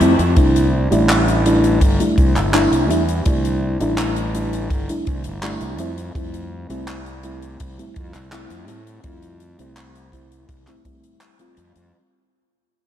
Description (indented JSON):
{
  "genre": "vaporwave",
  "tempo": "83 BPM",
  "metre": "4/4",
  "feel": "straight",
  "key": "unclear",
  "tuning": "A4 = 440 Hz",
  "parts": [
    { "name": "mellow FM electric piano", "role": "accompaniment", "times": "0.0-11.9 s", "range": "G3 to F4", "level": "-20 LUFS", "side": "left 1 dB", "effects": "analog chorus, ping-pong delay" },
    { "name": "fuzz fingered electric bass", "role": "bass", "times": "0.0-11.9 s", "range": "G1 to A2", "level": "-22 LUFS", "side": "equal", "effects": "overdrive, tube saturation" },
    { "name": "swinging big-band drum kit", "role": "drums", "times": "0.0-11.9 s", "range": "handclaps, hi-hat", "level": "-25 LUFS", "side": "equal", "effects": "none" },
    { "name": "kick drum", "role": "drums", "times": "0.4-11.0 s", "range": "none", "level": "-19 LUFS", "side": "equal", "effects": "none" }
  ],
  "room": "moderate plate reverb, RT60 3.0 s",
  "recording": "dreamy mix soaked in reverb",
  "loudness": "-15 LUFS",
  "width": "side -10 dB against mid",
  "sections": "0.0-11.9 A section",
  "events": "fade-out 0.0-11.9",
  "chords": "0.4 C69; 5.8 Fmaj9"
}